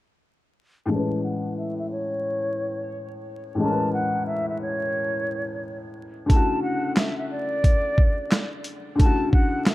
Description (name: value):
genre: hip hop, boom-bap hip-hop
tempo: 89 BPM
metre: 4/4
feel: swing 63% on 16ths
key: A major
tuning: A4 = 440 Hz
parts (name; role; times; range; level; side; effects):
- mellow silver concert flute; melody; 0.9-9.7 s; C#5 to A5; -28 LUFS; equal; low-pass filter, tape echo
- warm upright piano; accompaniment; 0.9-9.7 s; A2 to B4; -27 LUFS; left 2 dB; cassette tape, low-pass filter
- boom bap sampler-style drum kit; drums; 6.3-9.7 s; handclaps, hi-hat, kick drum, snare drum; -19 LUFS; equal; none
room: studio ambience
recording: dark, warm production, vinyl crackle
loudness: -22 LUFS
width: side -17 dB against mid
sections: 0.9-9.7 A section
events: filter sweep 0.9-9.7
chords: 0.9 Amaj7; 6.3 Dmaj7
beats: | 0.90 1.58 2.25 2.93 | 3.60 4.27 4.95 5.62 | 6.30 6.97 7.64 8.32 | 8.99 9.67